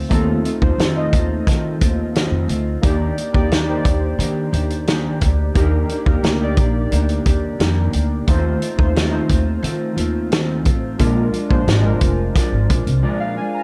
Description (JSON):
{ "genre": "indie pop, bedroom pop", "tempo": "88 BPM", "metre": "4/4", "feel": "straight", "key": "Eb lydian", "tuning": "A4 = 440 Hz", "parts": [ { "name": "mellow electric guitar", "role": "accompaniment", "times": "0.0-13.6 s", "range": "Bb2 to G4", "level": "-26 LUFS", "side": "equal", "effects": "lush chorus, warbly pitch drift" }, { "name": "warbly lo-fi synth keys", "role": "accompaniment", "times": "0.0-13.6 s", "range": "Ab3 to Bb5", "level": "-26 LUFS", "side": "equal", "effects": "chorus, cassette tape" }, { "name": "upright bass", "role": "bass", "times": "0.0-13.0 s", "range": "F1 to Eb3", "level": "-22 LUFS", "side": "equal", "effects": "none" }, { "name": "loose indie drum kit", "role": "drums", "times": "0.1-13.0 s", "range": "hi-hat, kick drum, snare drum", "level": "-21 LUFS", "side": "equal", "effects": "none" } ], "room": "moderate studio reverb, RT60 0.6 s", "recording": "dark, warm production", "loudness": "-18 LUFS", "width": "mono", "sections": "0.0-13.6 A section", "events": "break 13.0-13.6", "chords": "0.0 F7; 2.8 Ebmaj7; 8.3 F7/Eb; 11.0 Bb7" }